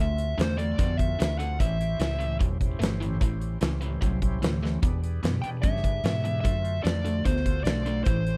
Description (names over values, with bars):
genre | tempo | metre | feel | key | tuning
blues rock power trio and southern rock | 148 BPM | 4/4 | straight | unclear | A4 = 440 Hz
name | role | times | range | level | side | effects
dark smooth lead guitar | melody | 0.0-2.4, 5.4-8.4 s | C5 to G5 | -34 LUFS | equal | overdrive
overdriven tonewheel organ | sustained chords | 0.0-8.4 s | C4 to C#5 | -44 LUFS | equal | slow rotary speaker
distorted electric guitar | riff | 0.0-8.4 s | E2 to B3 | -34 LUFS | equal | overdrive
vintage muted fingered electric bass | bass | 0.0-8.4 s | E1 to G#2 | -32 LUFS | equal | none
huge arena drum kit | drums | 0.2-8.4 s | hi-hat, kick drum, snare drum | -30 LUFS | equal | none
room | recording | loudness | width
little or no reverb | dry, close 1970s-style studio recording | -27 LUFS | mono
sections
0.0-8.4 A section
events
drum fill 4.6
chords
0.0 D7#9; 1.6 A7#9; 4.8 E7#9; 6.4 D7#9